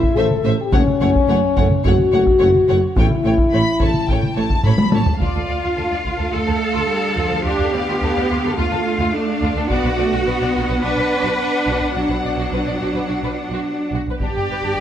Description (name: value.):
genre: cinematic, epic orchestral film score.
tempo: 107 BPM.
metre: 4/4.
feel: straight.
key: unclear.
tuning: A4 = 443 Hz.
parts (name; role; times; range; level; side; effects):
mellow French horn section; sustained chords; 0.0-14.8 s; A3 to A4; -21 LUFS; left 3 dB; none.
solo taiko drums; drums; 0.0-6.3, 9.7-10.8, 14.2-14.8 s; none; -19 LUFS; equal; none.
warm symphonic violin section; melody; 0.2-14.8 s; E5 to B5; -27 LUFS; left 5 dB; none.
rich symphonic violin section; second line; 0.2-14.8 s; D4 to D5; -29 LUFS; left 3 dB; none.
warm symphonic viola section; accompaniment; 0.2-13.9 s; F3 to D4; -24 LUFS; right 2 dB; none.
dark tuba; bass; 0.2-5.0 s; F#1 to A1; -25 LUFS; right 3 dB; none.
rich symphonic cello section; bass; 0.2-14.8 s; F#2 to B4; -23 LUFS; right 2 dB; none.
warm studio double bass section; bass; 0.2-14.8 s; F#1 to D2; -25 LUFS; right 3 dB; none.
room: moderate scoring stage reverb, RT60 1.7 s.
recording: none.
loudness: -16 LUFS.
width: side -10 dB against mid.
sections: 0.0-5.2 A section; 5.2-14.8 B section.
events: drum fill 4.7-5.2.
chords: 0.0 Am; 0.7 F#m; 3.0 A; 5.2 Dm; 9.7 Bm; 14.2 G.